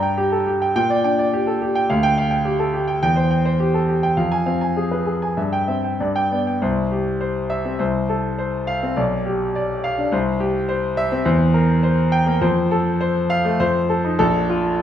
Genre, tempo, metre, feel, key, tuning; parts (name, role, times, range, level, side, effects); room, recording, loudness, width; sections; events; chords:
classical, virtuoso piano study; 103 BPM; 2/4; rubato; C major, F major from 11.3 s; A4 = 438 Hz
clear concert grand piano; solo; 0.0-14.8 s; Bb1 to Bb5; -17 LUFS; equal
wet recital hall reverb, RT60 1.6 s; recorded in a church or concert hall; -17 LUFS; side -10 dB against mid
0.0-6.6 A section; 6.6-14.8 B section
0.0 Gm; 0.7 Gm/Bb; 1.9 G5/D; 3.0 C/E; 4.2 Fm; 5.4 C/G; 6.0 G; 6.6 C; 7.8 F/C; 9.0 G7/B; 10.1 C; 11.3 C7/E; 12.4 F; 13.6 F7; 14.2 Bb5